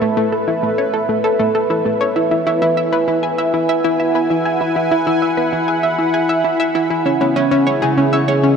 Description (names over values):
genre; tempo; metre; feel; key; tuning
ambient, sequencer-driven space music; 98 BPM; 4/4; straight; unclear; A4 = 440 Hz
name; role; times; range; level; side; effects
sweeping resonant pad; sustained chords; 0.0-8.6 s; C#4 to B5; -17 LUFS; right 1 dB; chorus
analog pluck; riff; 0.0-8.5 s; A3 to G#5; -18 LUFS; equal; chorus, ping-pong delay
Celtic harp; arpeggios; 7.2-8.6 s; C#3 to C#5; -20 LUFS; equal; auto-pan, ping-pong delay
room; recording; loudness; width
wet huge ambient reverb, RT60 7.3 s; in a vast, echoing space; -14 LUFS; side -6 dB against mid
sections
0.0-8.6 A section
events
none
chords
0.0 Asus2; 2.2 Eadd9; 7.1 C#m7